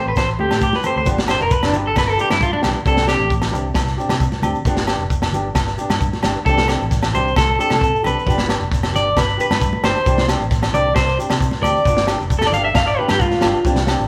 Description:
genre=highlife guitar band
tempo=133 BPM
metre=4/4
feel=straight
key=unclear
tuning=A4 = 440 Hz
part: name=fingerpicked old ladder-braced acoustic guitar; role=accompaniment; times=0.0-14.0 s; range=E3 to G4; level=-28 LUFS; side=equal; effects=none
part: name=electric guitar at the edge of break-up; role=arpeggios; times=0.0-3.3, 6.5-13.7 s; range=D4 to F5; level=-21 LUFS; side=equal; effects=spring reverb
part: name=fingered electric bass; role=bass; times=0.1-14.1 s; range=F1 to C3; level=-26 LUFS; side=equal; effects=none
part: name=crunchy breakbeat drum kit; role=drums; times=0.2-14.0 s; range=kick drum, snare drum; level=-24 LUFS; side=equal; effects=none
part: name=agogo bells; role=percussion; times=0.2-14.0 s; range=none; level=-29 LUFS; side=equal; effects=none
part: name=shekere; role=percussion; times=0.2-14.1 s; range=none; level=-30 LUFS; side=equal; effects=none
part: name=congas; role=percussion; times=0.4-13.9 s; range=none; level=-31 LUFS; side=equal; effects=none
room=moderate large studio reverb, RT60 1.2 s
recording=band playing live in one room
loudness=-18 LUFS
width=mono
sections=0.0-1.1 A section; 1.1-14.1 B section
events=clean electric guitar solo 1.1-14.1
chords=0.0 Fadd9/A (rootless); 1.1 G7; 2.9 Csus2; 4.7 G7; 6.5 Csus2; 8.3 G7; 10.1 Csus2; 11.9 G7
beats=0.17 0.62 | 1.07 1.52 1.97 2.42 | 2.87 3.32 3.77 4.22 | 4.67 5.12 5.57 6.01 | 6.46 6.91 7.36 7.81 | 8.26 8.71 9.16 9.61 | 10.06 10.51 10.96 11.41 | 11.86 12.31 12.76 13.21 | 13.66

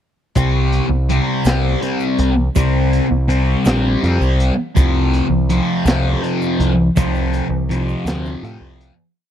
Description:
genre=psychedelic rock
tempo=54 BPM (dotted quarters)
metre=6/8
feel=straight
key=unclear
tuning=A4 = 440 Hz
part: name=thick fuzz guitar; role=riff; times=0.4-8.9 s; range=F2 to C4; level=-18 LUFS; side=left 1 dB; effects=distortion, phaser
part: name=growling picked electric bass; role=bass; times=0.4-8.9 s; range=Bb1 to A2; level=-17 LUFS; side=equal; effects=overdrive
part: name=crunchy breakbeat drum kit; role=drums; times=0.4-9.0 s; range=hi-hat, kick drum, snare drum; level=-20 LUFS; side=equal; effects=none
part: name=egg shaker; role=percussion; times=0.4-8.3 s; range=none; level=-37 LUFS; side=right 21 dB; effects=none
room=small room ambience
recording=dry, close 1970s-style studio recording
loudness=-14 LUFS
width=side -10 dB against mid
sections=0.4-9.2 groove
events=fade-out 7.0-9.2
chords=0.4 C5; 4.8 F5/C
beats=| 0.36 1.46 | 2.56 3.66 | 4.76 5.86 | 6.96 8.07

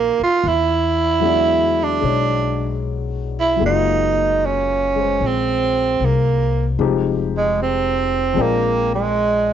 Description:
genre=jazz ballad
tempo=76 BPM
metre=4/4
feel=swing 69% on 8ths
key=unclear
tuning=A4 = 440 Hz
part: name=growling tenor saxophone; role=melody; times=0.0-9.5 s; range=Ab3 to F4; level=-17 LUFS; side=right 4 dB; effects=cassette tape, plate reverb
part: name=warm baby grand piano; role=accompaniment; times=0.0-9.5 s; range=Db3 to G5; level=-24 LUFS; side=left 10 dB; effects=plate reverb
part: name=upright bass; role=bass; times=0.0-9.5 s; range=F1 to E2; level=-23 LUFS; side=left 2 dB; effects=none
room=wet booth ambience, RT60 0.2 s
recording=home recording on cassette, nothing above 7.6 kHz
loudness=-16 LUFS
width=side -9 dB against mid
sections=0.0-9.5 A section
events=none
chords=0.4 E9; 3.6 Gbmaj9; 6.8 Fm7; 8.4 Bb13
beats=| 0.43 1.23 2.02 2.82 | 3.62 4.41 5.20 6.00 | 6.78 7.57 8.36 9.15

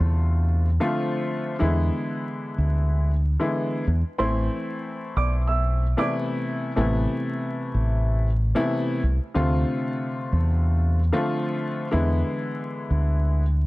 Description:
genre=hip hop, boom-bap hip-hop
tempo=93 BPM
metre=4/4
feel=swing 54% on 16ths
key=A harmonic minor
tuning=A4 = 439 Hz
part: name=dark grand piano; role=accompaniment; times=0.0-13.4 s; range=C3 to F4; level=-26 LUFS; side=left 1 dB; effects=cassette tape, high-pass filter, low-pass filter
part: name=deep dub fingered electric bass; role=bass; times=0.0-13.7 s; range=A1 to E2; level=-21 LUFS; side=equal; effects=none
part: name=dark upright piano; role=melody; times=4.2-6.1 s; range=C5 to E6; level=-29 LUFS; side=right 4 dB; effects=high-pass filter, low-pass filter, tape echo
room=small room ambience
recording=vinyl crackle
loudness=-22 LUFS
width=side -20 dB against mid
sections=0.0-4.2 A section; 4.2-13.7 B section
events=none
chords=0.0 Dm7; 1.6 E7; 4.2 Amadd9; 9.4 Dm7; 11.9 E7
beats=0.32 0.96 | 1.61 2.25 2.90 3.54 | 4.19 4.83 5.48 6.12 | 6.77 7.42 8.06 8.71 | 9.35 10.00 10.64 11.29 | 11.93 12.58 13.22

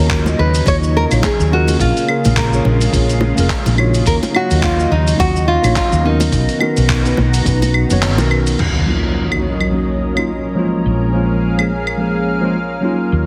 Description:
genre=sunset chillout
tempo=106 BPM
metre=4/4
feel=swing 57% on 16ths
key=Eb minor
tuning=A4 = 439 Hz
part: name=nylon-string guitar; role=melody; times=0.0-7.7 s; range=Eb4 to Db5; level=-22 LUFS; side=equal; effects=tape echo
part: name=tine electric piano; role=accompaniment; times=0.0-13.3 s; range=F3 to Eb5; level=-22 LUFS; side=equal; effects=tape echo
part: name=lush unison pad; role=sustained chords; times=0.0-13.3 s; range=Db3 to Bb5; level=-25 LUFS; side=equal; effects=chorus
part: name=woody fretless electric bass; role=bass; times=0.0-13.3 s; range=F1 to Eb2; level=-19 LUFS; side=equal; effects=ensemble chorus
part: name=dusty soul sampler-style drum kit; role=drums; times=0.1-12.0 s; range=claves, crash cymbal, handclaps, hi-hat, shaker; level=-24 LUFS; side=equal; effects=none
part: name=electronic kick drum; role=drums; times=0.1-7.6 s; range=none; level=-22 LUFS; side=equal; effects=none
part: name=bongos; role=percussion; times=0.3-8.3 s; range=none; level=-25 LUFS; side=equal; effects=none
part: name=impact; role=sound effects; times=8.6-10.9 s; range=none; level=-24 LUFS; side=equal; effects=none
room=moderate scoring stage reverb, RT60 2.0 s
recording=heavily compressed radio sound, multiband compression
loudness=-15 LUFS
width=mono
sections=0.0-8.6 A section; 8.6-13.3 B section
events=kick drops out 8.0-8.6; band accent 8.0; impact 8.6-10.9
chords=0.0 Ebm7; 1.8 Bbm7; 4.1 Ebm7; 6.3 Bmaj7; 8.6 Ebm7; 10.9 Bbm7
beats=0.10 0.67 1.23 | 1.80 2.36 2.93 3.50 | 4.06 4.63 5.20 5.76 | 6.33 6.89 7.46 8.03 | 8.59 9.16 9.72 10.29 | 10.86 11.42 11.99 12.55 | 13.12

